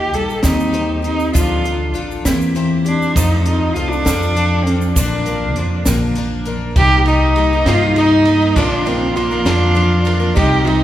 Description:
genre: acoustic folk duo or small band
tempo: 67 BPM (dotted quarters)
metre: 6/8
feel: straight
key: C dorian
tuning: A4 = 443 Hz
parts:
  - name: warm cello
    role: melody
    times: 0.0-10.8 s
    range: Bb3 to A4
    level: -18 LUFS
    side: equal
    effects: none
  - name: picked twelve-string acoustic guitar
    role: accompaniment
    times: 0.0-10.8 s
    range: Bb2 to Bb4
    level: -20 LUFS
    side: left 2 dB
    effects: none
  - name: upright bass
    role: bass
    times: 0.0-10.8 s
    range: A1 to G2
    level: -18 LUFS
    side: equal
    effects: none
  - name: compact cocktail drum kit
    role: drums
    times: 0.1-10.8 s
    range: hi-hat, kick drum, ride cymbal, snare drum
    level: -22 LUFS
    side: equal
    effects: none
  - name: tube shaker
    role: percussion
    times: 0.3-6.0 s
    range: none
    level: -28 LUFS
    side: right 6 dB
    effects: none
  - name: overdriven harmonica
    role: second line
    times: 6.8-10.8 s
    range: Eb4 to F4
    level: -19 LUFS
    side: right 2 dB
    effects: none
room: wet church reverb, RT60 3.1 s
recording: recorded in a church or concert hall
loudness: -13 LUFS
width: side -12 dB against mid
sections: 0.0-6.8 A section; 6.8-10.8 B section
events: none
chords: 0.4 Cm/Eb; 1.4 Dm; 2.3 C7/E; 3.2 F; 4.1 Dm/F; 5.0 Bb; 6.8 Cm7; 8.6 Bb

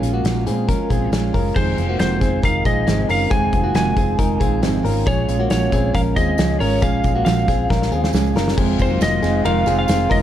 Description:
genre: jangly indie pop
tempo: 137 BPM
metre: 4/4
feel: straight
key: unclear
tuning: A4 = 440 Hz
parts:
  - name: lightly driven lead guitar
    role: melody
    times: 0.0-10.2 s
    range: Bb4 to Ab5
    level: -23 LUFS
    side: equal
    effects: analog delay
  - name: picked steel-string acoustic guitar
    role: accompaniment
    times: 0.0-10.2 s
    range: F2 to F4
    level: -22 LUFS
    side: right 7 dB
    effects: none
  - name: direct-recorded clean electric guitar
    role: arpeggios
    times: 0.0-10.2 s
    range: Gb3 to Bb4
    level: -24 LUFS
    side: left 7 dB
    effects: none
  - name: vintage muted fingered electric bass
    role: bass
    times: 0.0-10.2 s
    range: F1 to Bb2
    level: -22 LUFS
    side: equal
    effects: none
  - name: loose indie drum kit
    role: drums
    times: 0.0-10.2 s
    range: crash cymbal, hi-hat, kick drum, ride cymbal, snare drum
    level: -22 LUFS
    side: equal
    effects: none
  - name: tambourine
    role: percussion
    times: 5.1-10.0 s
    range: none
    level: -42 LUFS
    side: right 17 dB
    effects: none
  - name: warm trumpet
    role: second line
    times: 8.6-10.2 s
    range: F4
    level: -28 LUFS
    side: left 9 dB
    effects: none
room: light reverb, small room ambience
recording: dark, warm production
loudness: -16 LUFS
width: side -11 dB against mid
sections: 0.0-1.6 A section; 1.6-8.6 B section; 8.6-10.2 C section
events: drum fill 7.7-8.6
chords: 0.0 Bbm7; 1.6 Fm7; 5.1 Bbm7; 8.6 Fm7

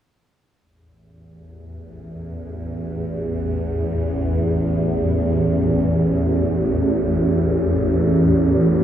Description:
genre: ambient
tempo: free time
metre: none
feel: none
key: unclear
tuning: A4 = 440 Hz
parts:
  - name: swarming drone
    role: drone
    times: 1.7-8.8 s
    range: A1 to E2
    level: -18 LUFS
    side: equal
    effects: built-in reverb
room: wet cathedral reverb, RT60 6.4 s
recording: in a vast, echoing space, small room ambience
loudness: -17 LUFS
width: side -10 dB against mid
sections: 0.6-8.8 A section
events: none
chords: 0.6 A5

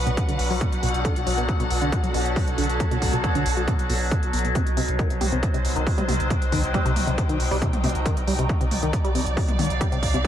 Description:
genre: driving peak-time techno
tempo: 137 BPM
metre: 4/4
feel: straight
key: unclear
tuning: A4 = 437 Hz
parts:
  - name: warm sub bass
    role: bass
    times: 0.0-10.2 s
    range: B1 to C2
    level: -27 LUFS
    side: equal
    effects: tube saturation, sidechain pumping, low-pass filter
  - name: overtone-sweeping drone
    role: drone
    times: 0.0-10.3 s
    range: B2 to F#3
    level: -30 LUFS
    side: equal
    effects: chorus, built-in reverb, phaser, sidechain pumping
  - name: warm studio string section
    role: texture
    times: 0.0-10.3 s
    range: D4 to G5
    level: -30 LUFS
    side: left 1 dB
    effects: sidechain pumping
  - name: tight sequenced synth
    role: riff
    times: 0.1-10.2 s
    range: B2 to G3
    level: -28 LUFS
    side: equal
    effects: chorus, sidechain pumping, dub echo
  - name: techno drum kit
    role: drums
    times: 0.1-10.3 s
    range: hi-hat, toms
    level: -32 LUFS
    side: right 2 dB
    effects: sidechain pumping on hats, sidechain pumping on cymbals, sidechain pumping on toms
  - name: electronic kick drum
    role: drums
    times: 0.2-10.3 s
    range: none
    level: -24 LUFS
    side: equal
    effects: none
room: light reverb, digital ambience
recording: none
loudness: -20 LUFS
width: side -10 dB against mid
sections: 0.0-10.3 A section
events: none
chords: 0.0 Bm; 4.6 Cm

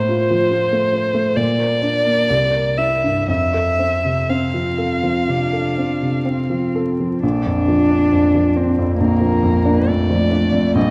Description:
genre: classical, slow romantic movement for piano trio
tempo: 59-72 BPM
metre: 4/4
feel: rubato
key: F major, Bb major from 7.2 s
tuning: A4 = 440 Hz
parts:
  - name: dark violin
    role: melody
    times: 0.0-10.9 s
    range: Bb4 to F5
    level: -22 LUFS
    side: equal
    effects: none
  - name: warm grand piano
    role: accompaniment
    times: 0.0-10.9 s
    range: Bb1 to C5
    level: -21 LUFS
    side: equal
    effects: none
  - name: dark cello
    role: second line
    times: 0.5-10.9 s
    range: G3 to D4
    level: -22 LUFS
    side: equal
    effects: none
room: moderate concert hall reverb, RT60 2.4 s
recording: vinyl crackle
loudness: -18 LUFS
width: mono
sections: 0.0-7.2 A section; 7.2-10.9 B section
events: none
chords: 0.0 F/A; 1.4 Gm/Bb; 2.3 C7; 3.3 F; 7.2 Bb

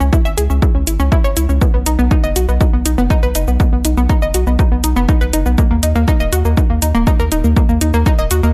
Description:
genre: melodic techno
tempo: 121 BPM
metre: 4/4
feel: straight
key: unclear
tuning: A4 = 440 Hz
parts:
  - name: analog pluck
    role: arpeggios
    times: 0.0-8.5 s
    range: A#3 to E5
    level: -20 LUFS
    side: equal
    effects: chorus, sidechain pumping, delay
  - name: round analog bass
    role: bass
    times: 0.0-8.5 s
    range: D#1 to D#2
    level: -18 LUFS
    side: equal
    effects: sidechain pumping
  - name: electronic shaker and hi-hat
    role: drums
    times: 0.0-8.5 s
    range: none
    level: -24 LUFS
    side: equal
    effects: none
  - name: electronic kick drum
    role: drums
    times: 0.1-8.2 s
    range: none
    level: -16 LUFS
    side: equal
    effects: none
room: digital ambience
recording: none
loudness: -14 LUFS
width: mono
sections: 0.0-8.5 A section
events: none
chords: 0.0 C#m; 1.6 B; 5.6 D#5

